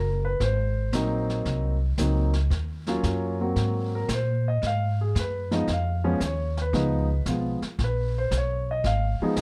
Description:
jazz piano trio; 114 BPM; 4/4; swing 69% on 8ths; Ab mixolydian; A4 = 441 Hz
dark concert grand piano; melody; 0.0-9.4 s; F3 to F5; -30 LUFS; equal; plate reverb
upright bass; bass; 0.0-9.4 s; Gb1 to Bb2; -28 LUFS; equal
jazz brush drum kit; drums; 0.4-9.4 s; brushed snare drum, hi-hat, kick drum, snare drum; -37 LUFS; equal
light reverb; dark, warm production; -26 LUFS; mono
0.0-9.4 A section
grand piano solo 0.0-9.4
0.4 Ab7; 2.5 Ebm7; 3.6 Ab7; 4.6 Db7

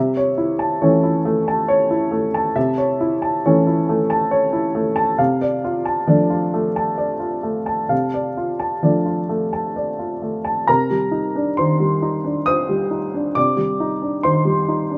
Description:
neoclassical minimalist piano; 67 BPM; 3/4; uneven beats, rubato; A4 = 440 Hz
warm upright piano; solo; 0.0-15.0 s; C3 to Eb6; -19 LUFS; equal
light reverb; -19 LUFS; mono
0.0-10.7 A section; 10.7-15.0 B section
0.0 A/C; 5.2 Dm/C; 10.7 Cmadd9

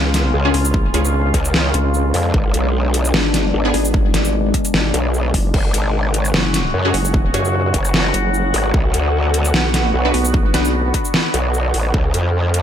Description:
heavy wobble dubstep; 150 BPM; 4/4; swing 54% on 16ths, half-time; A4 = 441 Hz
evolving wavetable pad; sustained chords; 0.0-12.6 s; B2 to F#4; -22 LUFS; left 1 dB; phaser, built-in reverb, sidechain pumping
vowel-sweep wobble bass; bass; 0.0-10.9 s; F#1 to F#2; -18 LUFS; equal; chorus, overdrive
dubstep drum kit; drums; 0.1-12.6 s; crash cymbal, hi-hat, shaker, snare drum; -20 LUFS; equal; overdrive
growl bass; bass; 0.3-12.6 s; F#1 to F#2; -18 LUFS; equal; chorus, overdrive
orchestra-hit-like synth stab; stabs; 0.4-1.1, 3.6-3.8, 6.8-7.5, 10.0-10.7 s; B3 to B4; -23 LUFS; equal; built-in reverb, ping-pong delay
electronic kick drum; drums; 0.7-12.0 s; -18 LUFS; equal; overdrive
little or no reverb; -14 LUFS; side -9 dB against mid
0.0-12.6 A section
0.0 C#; 2.3 G#dim; 5.5 F#sus2; 8.7 Bm; 11.9 C#

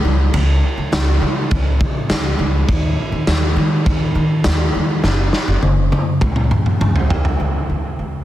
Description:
dream pop; 102 BPM; 4/4; straight; A4 = 440 Hz
upright bass; bass; 0.0-8.2 s; Gb1 to Eb3; -17 LUFS; equal
raw garage drum kit; drums; 0.3-7.4 s; kick drum, ride cymbal, snare drum, tambourine, toms; -18 LUFS; equal
light reverb; dense, heavily limited modern master; -14 LUFS; side -13 dB against mid
0.0-7.4 A section
drum fill 5.0-7.4

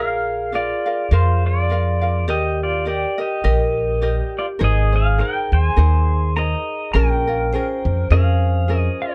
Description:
Hawaiian; 103 BPM; 4/4; swing 56% on 8ths; Eb major, Ab major from 4.6 s; A4 = 440 Hz
pedal steel guitar; melody; 0.0-9.1 s; F4 to Bb5; -26 LUFS; equal
vibraphone with medium hard mallets; second line; 0.0-9.1 s; G4 to C5; -29 LUFS; equal
ukulele; accompaniment; 0.0-9.1 s; Db4 to F5; -29 LUFS; equal
upright bass; bass; 0.0-8.9 s; Ab1 to F2; -20 LUFS; equal
light reverb; dark, warm production; -19 LUFS; mono
0.0-4.6 A section; 4.6-9.1 B section
0.0 Bb; 2.3 Ebmaj7; 4.6 Abadd9; 6.9 Bbm7

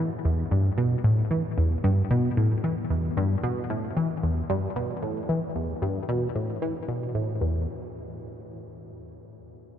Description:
ambient; 113 BPM; 4/4; straight; E minor; A4 = 435 Hz
tight sequenced synth; solo; 0.0-7.7 s; E2 to E3; -24 LUFS; equal; chorus, phaser, ping-pong delay
wet huge ambient reverb, RT60 8.0 s; cassette tape; -24 LUFS; side -10 dB against mid
0.0-7.4 A section; 7.4-9.8 B section

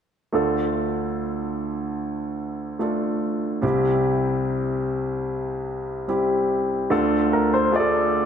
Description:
pop; 73 BPM; 4/4; straight; D minor; A4 = 442 Hz
clear grand piano; accompaniment; 0.3-8.3 s; C2 to A4; -21 LUFS; equal
warm concert grand piano; melody; 7.3-8.3 s; Bb4 to D5; -20 LUFS; left 1 dB
wet concert hall reverb, RT60 2.0 s; -21 LUFS; side -8 dB against mid
0.3-6.9 A section; 6.9-8.3 B section
0.3 Dm; 3.6 C; 6.9 Dm

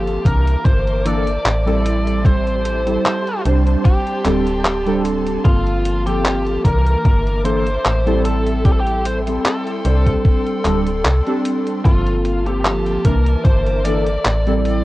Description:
vaporwave; 75 BPM; 4/4; swing 54% on 16ths; A4 = 440 Hz
biting lead guitar; melody; 0.0-14.8 s; F4 to D5; -22 LUFS; equal; overdrive, tape echo
warbly lo-fi synth keys; accompaniment; 0.0-14.8 s; E3 to C5; -21 LUFS; right 1 dB; lush chorus, vintage 12-bit sampler grit
warm studio string section; sustained chords; 0.0-14.8 s; Bb3 to D6; -31 LUFS; equal
slap-like FM bass; bass; 0.0-14.8 s; D1 to C2; -19 LUFS; equal
detuned 8-bit digital drum machine; drums; 0.1-14.8 s; handclaps, hi-hat; -22 LUFS; equal; vintage 12-bit sampler grit
electronic kick drum; drums; 0.2-13.6 s; -14 LUFS; equal; vintage 12-bit sampler grit
light reverb; worn, warbling old tape, cassette tape, warbly pitch drift; -15 LUFS; side -17 dB against mid
0.0-14.8 A section
0.2 C13; 1.9 Am7; 3.9 D7sus4; 5.5 Gm11; 6.7 C13; 8.2 Am7; 10.2 D7sus4; 11.8 Gm11; 13.1 C13

